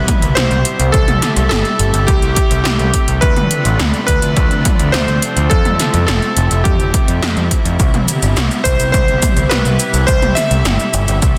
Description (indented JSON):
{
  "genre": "synthwave",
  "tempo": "105 BPM",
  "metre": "4/4",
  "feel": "straight",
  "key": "C major",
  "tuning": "A4 = 436 Hz",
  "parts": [
    { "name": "bright electric grand piano", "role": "melody", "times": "0.0-11.4 s", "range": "G4 to E5", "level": "-21 LUFS", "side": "equal", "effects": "digital delay" },
    { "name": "lush unison pad", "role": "sustained chords", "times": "0.0-11.4 s", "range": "B2 to E4", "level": "-24 LUFS", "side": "equal", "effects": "chorus, sidechain pumping" },
    { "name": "growling picked electric bass", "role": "bass", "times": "0.0-11.3 s", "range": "F1 to F2", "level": "-18 LUFS", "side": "equal", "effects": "overdrive, tube saturation, sidechain pumping" },
    { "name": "impact", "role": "sound effects", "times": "0.0-0.9 s", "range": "none", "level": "barely audible", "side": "none", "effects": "none" },
    { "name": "80s electronic pad drums", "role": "drums", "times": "0.1-11.3 s", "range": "hi-hat, shaker, snare drum, toms", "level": "-21 LUFS", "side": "equal", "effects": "gated reverb on snare and toms, overdrive" },
    { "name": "electronic kick drum", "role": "drums", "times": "0.1-11.3 s", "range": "none", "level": "-17 LUFS", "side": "equal", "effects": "overdrive" }
  ],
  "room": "light reverb, digital ambience",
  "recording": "dense, heavily limited modern master",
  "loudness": "-14 LUFS",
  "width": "mono",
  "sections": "0.0-11.4 A section",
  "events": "impact 0.0-0.9",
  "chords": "0.0 Cmaj7; 0.9 Am7; 3.2 Dm7; 5.5 Fmaj7; 7.8 Cmaj7; 10.1 Am7",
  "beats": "0.37 | 0.94 1.51 2.08 2.65 | 3.22 3.80 4.37 4.94 | 5.51 6.08 6.65 7.22 | 7.80 8.37 8.94 9.51 | 10.08 10.65 11.22"
}